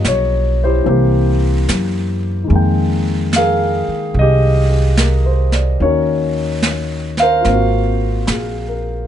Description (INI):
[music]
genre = jazz ballad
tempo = 73 BPM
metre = 4/4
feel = swing 67% on 8ths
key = unclear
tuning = A4 = 440 Hz
[part]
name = dark concert grand piano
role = accompaniment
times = 0.0-9.1 s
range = Eb3 to G5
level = -16 LUFS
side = left 2 dB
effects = none
[part]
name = upright bass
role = bass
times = 0.0-9.1 s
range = Ab1 to Gb2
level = -16 LUFS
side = right 1 dB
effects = none
[part]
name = jazz brush drum kit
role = drums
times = 0.0-9.1 s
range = brushed snare drum, hi-hat, snare drum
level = -22 LUFS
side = right 2 dB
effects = none
[sound]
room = little or no reverb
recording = nothing above 10.7 kHz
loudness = -13 LUFS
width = side -10 dB against mid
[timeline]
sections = 0.0-9.1 A section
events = none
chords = 0.0 Gm7b5; 0.9 C7; 2.5 Fm11; 5.8 Ebm7; 7.4 Ab13